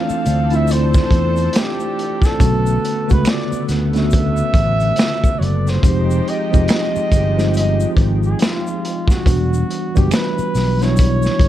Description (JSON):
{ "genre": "R&B, neo-soul", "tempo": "70 BPM", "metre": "4/4", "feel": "swing 61% on 16ths", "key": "unclear", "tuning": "A4 = 439 Hz", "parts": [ { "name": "mellow flugelhorn", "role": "melody", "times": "0.0-11.5 s", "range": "F4 to F5", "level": "-22 LUFS", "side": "equal", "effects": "slapback echo" }, { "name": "mellow tine electric piano", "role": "accompaniment", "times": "0.0-11.5 s", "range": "C#3 to G4", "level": "-21 LUFS", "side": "equal", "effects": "overdrive, medium stereo tremolo" }, { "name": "lush unison pad", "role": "sustained chords", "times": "0.0-9.2 s", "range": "F3 to A4", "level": "-29 LUFS", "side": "right 1 dB", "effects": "chorus" }, { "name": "fingered electric bass", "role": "bass", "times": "0.1-11.5 s", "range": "E1 to E2", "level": "-17 LUFS", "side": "equal", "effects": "none" }, { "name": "egg shaker and finger snaps", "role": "percussion", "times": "0.1-11.4 s", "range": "none", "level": "-33 LUFS", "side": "right 2 dB", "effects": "none" }, { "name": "crunchy breakbeat drum kit", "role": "drums", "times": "0.3-11.5 s", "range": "hi-hat, kick drum, snare drum", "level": "-17 LUFS", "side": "equal", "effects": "none" } ], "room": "little or no reverb", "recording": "dark, warm production", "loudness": "-14 LUFS", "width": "side -12 dB against mid", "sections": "0.0-9.3 A section; 9.3-11.5 A section", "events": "none", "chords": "0.0 Dm9; 2.4 Bm9; 5.8 Fm9; 9.3 Em9" }